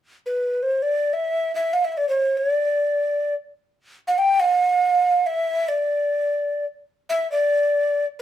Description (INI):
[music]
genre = arabic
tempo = free time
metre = none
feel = none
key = D maqam rast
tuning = A4 = 440 Hz
[part]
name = breathy mellow tenor recorder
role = solo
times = 0.3-8.2 s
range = B4 to G5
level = -19 LUFS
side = equal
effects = none
[sound]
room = moderate small room reverb, RT60 0.6 s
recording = band playing live in one room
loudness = -19 LUFS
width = side -11 dB against mid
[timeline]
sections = 0.0-8.2 A section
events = none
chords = none